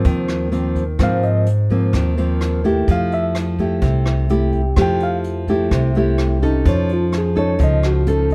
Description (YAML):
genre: bossa nova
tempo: 127 BPM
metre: 4/4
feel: straight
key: unclear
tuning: A4 = 441 Hz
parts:
  - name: nylon-string guitar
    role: accompaniment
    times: 0.0-8.3 s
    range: Ab2 to A4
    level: -22 LUFS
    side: equal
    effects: none
  - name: upright bass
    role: bass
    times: 0.0-8.3 s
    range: C2 to Ab2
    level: -21 LUFS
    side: equal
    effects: none
  - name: jazz brush drum kit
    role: drums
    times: 0.0-8.3 s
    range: hi-hat, kick drum, rim click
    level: -26 LUFS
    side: equal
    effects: none
  - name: mellow tine electric piano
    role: melody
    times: 1.0-8.3 s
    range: F4 to G5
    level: -24 LUFS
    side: equal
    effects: none
room: little or no reverb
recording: none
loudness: -18 LUFS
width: mono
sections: 0.0-8.3 A section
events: tine electric piano solo 0.0-8.3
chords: 0.0 Ab69; 2.9 Fmaj9; 6.7 Faug7